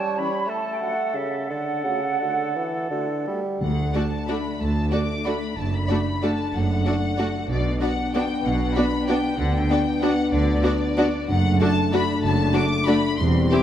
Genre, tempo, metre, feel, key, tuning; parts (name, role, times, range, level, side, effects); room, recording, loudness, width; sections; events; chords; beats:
classical; 161-207 BPM; 3/4; rubato; D major; A4 = 440 Hz
clear oboe; second line; 0.0-3.4 s; A4 to C#5; -34 LUFS; right 1 dB
flute section; second line; 0.0-3.3 s; E5 to B5; -27 LUFS; right 5 dB
warm bassoon; accompaniment; 0.0-3.6 s; C#3 to A3; -28 LUFS; right 1 dB
warm French horn section; sustained chords; 0.2-13.6 s; E3 to G4; -26 LUFS; left 2 dB
rich studio violin section; melody; 3.6-13.6 s; D5 to D6; -29 LUFS; left 4 dB
clear studio double bass section; bass; 3.6-13.5 s; E1 to D2; -26 LUFS; right 2 dB
rich studio cello section; bass; 3.6-13.5 s; D2 to D3; -28 LUFS; right 2 dB
timpani; percussion; 3.6-4.1 s; D3; -30 LUFS; left 1 dB
rich studio violin section; second line; 3.9-13.6 s; F#4 to D5; -29 LUFS; left 3 dB
rich studio viola section; accompaniment; 4.0-13.6 s; A3 to E4; -27 LUFS; right 1 dB
wet concert hall reverb, RT60 2.4 s; -20 LUFS; side -10 dB against mid
0.0-3.6 A section; 3.6-13.6 A section
0.5 D/A; 1.2 A7/C#; 1.5 D; 5.6 D/F#; 7.5 Bm; 9.4 Bm/D; 11.3 D/F#
0.17 | 0.48 0.81 1.15 | 1.50 1.85 2.21 | 2.56 2.91 3.28 | 3.62 3.94 4.29 | 4.60 4.92 5.26 | 5.57 5.89 6.22 | 6.54 6.86 7.19 | 7.49 7.81 8.14 | 8.45 8.76 9.09 | 9.39 9.70 10.02 | 10.32 10.63 10.97 | 11.28 11.60 11.92 | 12.23 12.54 12.88 | 13.20 13.52